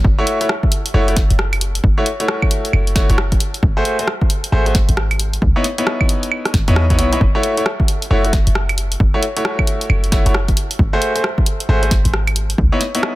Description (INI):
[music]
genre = UK garage, two-step garage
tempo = 134 BPM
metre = 4/4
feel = swing 62% on 16ths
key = F# dorian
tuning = A4 = 441 Hz
[part]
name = short 808-style bass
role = bass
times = 0.0-12.7 s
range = F#1 to E2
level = -17 LUFS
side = equal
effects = none
[part]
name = electronic kick drum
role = drums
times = 0.0-12.7 s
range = none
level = -16 LUFS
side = equal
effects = none
[part]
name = bright grand piano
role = stabs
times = 0.2-13.2 s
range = A3 to C#5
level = -20 LUFS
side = equal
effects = dub echo
[part]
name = punchy analog drum machine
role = drums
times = 0.3-13.1 s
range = claves, hi-hat, rim click, snare drum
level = -21 LUFS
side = right 1 dB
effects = soft clipping on snare
[sound]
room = light reverb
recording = dense, heavily limited modern master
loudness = -14 LUFS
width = side -18 dB against mid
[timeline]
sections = 0.0-13.2 A section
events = none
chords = 0.0 F#m7; 3.4 G#7b9; 5.4 C#m9; 7.2 F#m7; 10.6 G#7b9; 12.6 C#m9